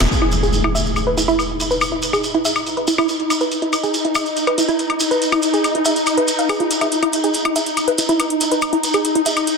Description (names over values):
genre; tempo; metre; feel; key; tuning
psychedelic trance; 141 BPM; 4/4; straight; E major; A4 = 441 Hz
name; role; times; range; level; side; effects
swarming drone; sustained chords; 0.0-9.6 s; D#4 to G#4; -21 LUFS; left 1 dB; built-in reverb
woody wave-folded pluck; riff; 0.0-9.3 s; E4 to F5; -20 LUFS; moving between left 2 dB and right 4 dB; chorus, auto-pan, dub echo
drum and bass drum kit; drums; 0.0-9.6 s; hi-hat, snare drum, woodblock; -23 LUFS; left 3 dB; low-pass filter on hats, low-pass filter on perc, low-pass filter on snare, low-pass filter on room
shekere; percussion; 0.0-9.6 s; none; -24 LUFS; right 3 dB; none
impact; sound effects; 0.1-1.8 s; none; -22 LUFS; equal; none
room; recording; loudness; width
wet plate reverb, RT60 1.7 s; dense, heavily limited modern master; -15 LUFS; side -4 dB against mid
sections
0.1-9.6 A section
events
band accent 0.0; impact 0.1-1.8; filter sweep on drum 0.1-9.6; filter sweep on synth arpeggio sound 0.1-9.6; filter sweep on synth drone 0.1-9.6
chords
0.1 E5